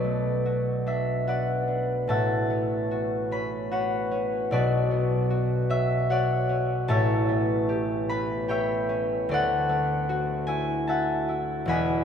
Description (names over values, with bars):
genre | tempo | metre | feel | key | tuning
classical, solo harp piece | 75 BPM | 3/4 | rubato | unclear | A4 = 442 Hz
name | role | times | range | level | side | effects
concert harp | solo | 0.0-12.0 s | E1 to B5 | -23 LUFS | left 1 dB | none
room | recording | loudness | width
wet cathedral reverb, RT60 5.0 s | in a vast, echoing space | -23 LUFS | side -7 dB against mid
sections
0.0-12.0 A section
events
none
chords
0.0 Bm7; 2.1 A69; 4.5 Bmadd9; 6.9 A9; 9.3 Dadd9